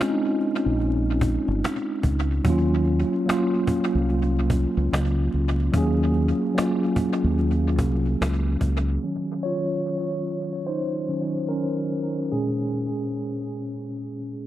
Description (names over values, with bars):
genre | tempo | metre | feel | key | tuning
lo-fi hip hop | 73 BPM | 4/4 | swing 62% on 16ths | Eb dorian | A4 = 440 Hz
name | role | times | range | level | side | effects
mellow tine electric piano | accompaniment | 0.0-14.5 s | Bb2 to Db5 | -24 LUFS | equal | medium stereo tremolo, tape echo
cajon | drums | 0.0-8.8 s | none | -29 LUFS | equal | tape echo
deep dub fingered electric bass | bass | 0.7-9.0 s | G1 to Eb2 | -23 LUFS | equal | none
room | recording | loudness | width
light reverb, small room ambience | echo-heavy mix, vinyl crackle, low-pass filter | -21 LUFS | side -13 dB against mid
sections
0.0-9.0 A section; 9.0-14.5 B section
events
tine electric piano solo 9.0-14.5; filter sweep 9.0-14.5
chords
0.0 Bbm7; 2.4 Ebm7; 12.3 Bbm7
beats
0.81 1.63 | 2.45 3.27 4.09 4.92 | 5.74 6.56 7.38 8.20 | 9.02 9.85 10.67 11.49 | 12.31 13.13 13.96